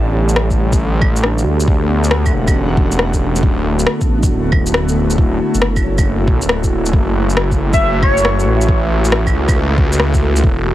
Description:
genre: future garage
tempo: 137 BPM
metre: 4/4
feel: swing 66% on 16ths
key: F# phrygian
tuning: A4 = 444 Hz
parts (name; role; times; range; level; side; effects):
- muted felt-like synth keys; accompaniment; 0.0-10.7 s; A3 to E5; -24 LUFS; right 4 dB; chorus, sidechain pumping, tape echo
- airy breathy pad; sustained chords; 0.0-10.7 s; D3 to F#5; -21 LUFS; left 1 dB; chorus, sidechain pumping
- swelling detuned saw bass; bass; 0.0-10.7 s; D1 to D2; -16 LUFS; equal; sidechain pumping
- flickering grainy texture; texture; 0.8-10.7 s; A3 to A4; -28 LUFS; equal; none
- electronic shaker, rim click and claves; drums; 0.3-10.4 s; none; -19 LUFS; left 1 dB; overdrive, small room ambience
- electronic kick drum; drums; 0.5-10.6 s; none; -16 LUFS; equal; overdrive, small room ambience
- airy dreamy lead; melody; 7.7-8.4 s; C#5 to E5; -20 LUFS; left 1 dB; chorus, analog delay
room: little or no reverb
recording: heavily compressed radio sound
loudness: -12 LUFS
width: side -14 dB against mid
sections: 0.0-10.7 A section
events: none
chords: 0.0 Em9; 3.4 D69; 6.9 F#m7

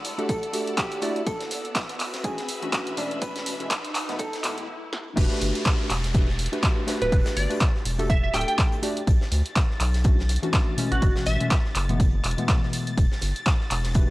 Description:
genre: deep house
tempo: 123 BPM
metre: 4/4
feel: swing 57% on 16ths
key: E dorian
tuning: A4 = 440 Hz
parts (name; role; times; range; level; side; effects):
- hollow-body jazz guitar; melody; 0.0-4.7 s; D4 to B4; -34 LUFS; equal; tape echo
- huge arena drum kit; drums; 0.0-14.1 s; hi-hat, snare drum; -39 LUFS; left 1 dB; none
- punchy analog drum machine; drums; 0.0-14.1 s; crash cymbal, handclaps, hi-hat, snare drum; -29 LUFS; equal; none
- riser and downlifter; sound effects; 0.0-9.1 s; none; -38 LUFS; equal; none
- analog string pad; texture; 0.0-14.1 s; E6 to A6; -42 LUFS; left 1 dB; ensemble chorus, sidechain pumping
- bright studio string section; texture; 0.0-4.7 s; E4 to B5; -38 LUFS; left 1 dB; sidechain pumping
- warm analog keys; stabs; 0.2-14.1 s; B2 to D5; -30 LUFS; left 1 dB; chorus, sidechain pumping, tape echo
- electronic kick drum; drums; 0.3-14.1 s; none; -22 LUFS; equal; none
- round analog bass; bass; 5.2-14.1 s; D1 to D2; -25 LUFS; equal; none
- glassy wavetable pluck; melody; 7.0-11.5 s; F#4 to G5; -28 LUFS; right 1 dB; chorus, tape echo
room: digital ambience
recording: dry, gritty hardware recording, cassette tape, high-pass filter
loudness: -22 LUFS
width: side -19 dB against mid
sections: 0.0-5.2 A section; 5.2-14.1 B section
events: build-up 0.0-5.2; riser 0.0-4.7; stop 4.7-5.2; drum fill 4.9; drop 5.2-14.1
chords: 0.0 Em11; 1.3 Bm11; 3.2 F#m11; 5.2 Em11; 9.1 Bm11; 11.0 F#m11; 13.0 Emadd11

